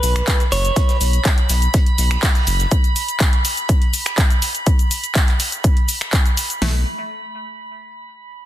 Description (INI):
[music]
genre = progressive house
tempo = 123 BPM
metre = 4/4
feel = straight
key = unclear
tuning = A4 = 437 Hz
[part]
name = direct-recorded clean electric guitar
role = melody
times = 0.0-1.0 s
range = B4 to C#5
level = -23 LUFS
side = right 2 dB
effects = tape echo
[part]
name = round analog bass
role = bass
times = 0.0-2.7, 6.6-6.8 s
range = F#1 to B1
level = -18 LUFS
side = equal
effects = sidechain pumping
[part]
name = big-room dance drum kit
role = drums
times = 0.0-6.6 s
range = finger snaps, handclaps, hi-hat, shaker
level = -22 LUFS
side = equal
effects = none
[part]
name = crunchy breakbeat drum kit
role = drums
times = 0.0-2.7 s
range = hi-hat, snare drum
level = -35 LUFS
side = right 1 dB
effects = none
[part]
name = drifting glass-harmonics texture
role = texture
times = 0.0-6.6 s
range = B5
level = -27 LUFS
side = right 3 dB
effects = chorus, built-in reverb, sidechain pumping
[part]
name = big-room dance drum kit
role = drums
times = 0.3-6.7 s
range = hi-hat, kick drum, snare drum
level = -16 LUFS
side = equal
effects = none
[part]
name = analog pluck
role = arpeggios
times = 6.6-6.8 s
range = A3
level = -32 LUFS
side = left 2 dB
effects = chorus, sidechain pumping, tape echo
[sound]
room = digital ambience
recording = dense, heavily limited modern master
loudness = -15 LUFS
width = side -13 dB against mid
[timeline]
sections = 0.0-6.6 A section; 6.6-8.5 B section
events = none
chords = 0.0 B5; 2.7 N.C.; 6.6 Asus2/B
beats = 0.28 | 0.76 1.25 1.74 2.23 | 2.72 3.20 3.69 4.18 | 4.67 5.16 5.64 6.13 | 6.62